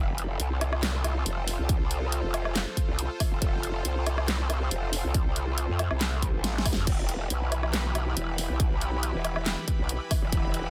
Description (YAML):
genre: heavy wobble dubstep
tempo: 139 BPM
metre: 4/4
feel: half-time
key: unclear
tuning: A4 = 440 Hz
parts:
  - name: supersaw pad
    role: sustained chords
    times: 0.0-10.7 s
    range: E3 to B5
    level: -39 LUFS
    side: equal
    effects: sidechain pumping
  - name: growl bass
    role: bass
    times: 0.0-10.7 s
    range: E1 to F2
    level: -31 LUFS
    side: equal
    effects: chorus, overdrive
  - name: dubstep drum kit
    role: drums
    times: 0.2-10.6 s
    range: crash cymbal, handclaps, hi-hat, snare drum, woodblock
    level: -34 LUFS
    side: equal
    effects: none
  - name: electronic kick drum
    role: drums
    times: 1.7-10.4 s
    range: none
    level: -29 LUFS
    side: equal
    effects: none
room: little or no reverb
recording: dense, heavily limited modern master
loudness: -28 LUFS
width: mono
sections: 0.0-10.7 A section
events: drum fill 6.4-6.9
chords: 0.0 F; 6.9 Em